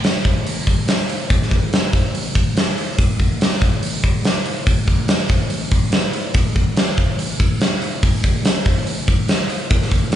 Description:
rock; 143 BPM; 4/4; straight
big rock drum kit; drums; 0.0-10.2 s; hi-hat, kick drum, snare drum; -16 LUFS; equal
moderate club reverb, RT60 0.6 s; live gig heard through the venue's PA, club ambience, nothing above 10.6 kHz; -16 LUFS; side -11 dB against mid
0.0-10.2 A section
0.04 0.46 0.88 | 1.30 1.72 2.14 2.56 | 2.99 3.41 3.83 4.25 | 4.67 5.09 5.51 5.93 | 6.35 6.77 7.19 7.61 | 8.03 8.45 8.87 9.29 | 9.71 10.13

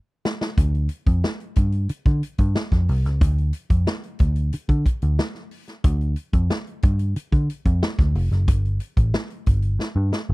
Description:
funk; 91 BPM; 4/4; straight; D minor; A4 = 442 Hz
swinging big-band drum kit; drums; 0.3-10.3 s; hi-hat, kick drum, snare drum; -21 LUFS; equal
vintage muted picked electric bass; bass; 0.6-10.3 s; F1 to D3; -20 LUFS; equal
little or no reverb; dry, close 1970s-style studio recording; -19 LUFS; side -23 dB against mid
0.0-10.3 A section
drum fill 0.0-0.6, 9.8-10.3
| 0.58 1.24 1.90 2.55 | 3.21 3.87 4.53 5.19 | 5.85 6.51 7.17 7.82 | 8.48 9.14 9.80

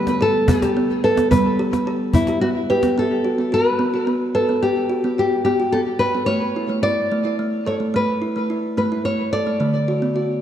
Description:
world meditative, meditative tuned percussion; 72 BPM (dotted quarters); 6/8; straight; B minor; A4 = 438 Hz
nylon-string guitar; melody; 0.0-10.4 s; E4 to D5; -21 LUFS; left 2 dB; diffuse ambient delay
kalimba; arpeggios; 0.0-10.4 s; D3 to B4; -20 LUFS; right 2 dB
cajon; percussion; 0.1-3.0 s; -22 LUFS; left 2 dB
wet scoring stage reverb, RT60 1.7 s, studio reverb; dark, warm production; -17 LUFS; side -10 dB against mid
0.0-3.0 A section; 3.0-10.4 B section
0.0 G; 3.0 B5; 6.3 A; 9.6 D
0.49 | 1.31 2.14 | 2.97 3.79 | 4.62 5.45 | 6.28 7.11 | 7.94 8.77 | 9.60

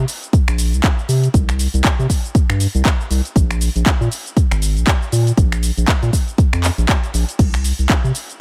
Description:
deep house; 119 BPM; 4/4; swing 58% on 16ths; A4 = 440 Hz
round analog bass; bass; 0.0-8.1 s; Ab1 to C3; -19 LUFS; equal; sidechain pumping
house drum kit; drums; 0.1-8.4 s; crash cymbal, finger snaps, handclaps, hi-hat, shaker; -25 LUFS; equal; overdrive
electronic kick drum; drums; 0.3-8.0 s; -17 LUFS; equal; overdrive
digital ambience; -17 LUFS; mono
0.0-8.4 A section
0.33 0.84 | 1.34 1.84 2.35 2.85 | 3.36 3.86 4.37 4.87 | 5.38 5.88 6.38 6.89 | 7.39 7.90

